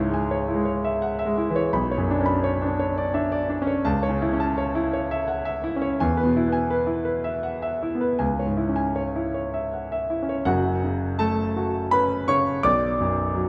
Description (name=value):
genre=neoclassical minimalist piano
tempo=78-87 BPM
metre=3/4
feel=rubato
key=F# minor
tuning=A4 = 439 Hz
part: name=clear grand piano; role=solo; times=0.0-13.5 s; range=F#1 to D6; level=-24 LUFS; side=equal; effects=none
room=wet recital hall reverb, RT60 1.6 s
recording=none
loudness=-24 LUFS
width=mono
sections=0.0-10.5 A section; 10.5-13.5 B section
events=none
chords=0.0 C#m; 1.7 Bmadd9; 3.9 A/C#; 6.0 E; 8.2 C#m; 10.5 F#m; 12.7 Bm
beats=0.32 1.02 | 1.72 2.43 3.14 | 3.86 4.58 5.30 | 6.02 6.73 7.46 | 8.22 8.98 9.73 | 10.49 11.22 11.94 | 12.65 13.36